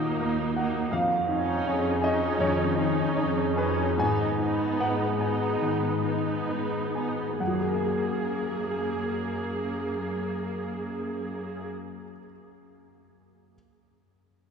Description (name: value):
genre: cinematic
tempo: 64-85 BPM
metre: 4/4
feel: rubato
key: F# major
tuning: A4 = 443 Hz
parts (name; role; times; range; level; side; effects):
- clear grand piano; accompaniment; 0.0-13.6 s; D#2 to G#5; -30 LUFS; equal; none
- warm studio viola section; accompaniment; 0.0-11.7 s; A#3 to G#4; -30 LUFS; right 1 dB; none
- concert harp; arpeggios; 0.0-12.3 s; F#2 to C#5; -32 LUFS; left 4 dB; none
- rich studio cello section; bass; 0.0-11.7 s; D#2 to G#2; -33 LUFS; right 3 dB; none
room: wet cathedral reverb, RT60 4.4 s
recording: recorded in a church or concert hall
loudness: -25 LUFS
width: side -6 dB against mid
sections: 0.0-7.4 A section; 7.4-10.9 B section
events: slowing down 0.0-7.4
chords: 0.0 D#m; 0.9 C#add9/E#; 4.0 G#m7; 7.4 F#add9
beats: 0.21 | 0.92 1.65 2.40 3.17 | 3.99 4.79 5.60 6.48 | 7.40 8.27 9.13 10.01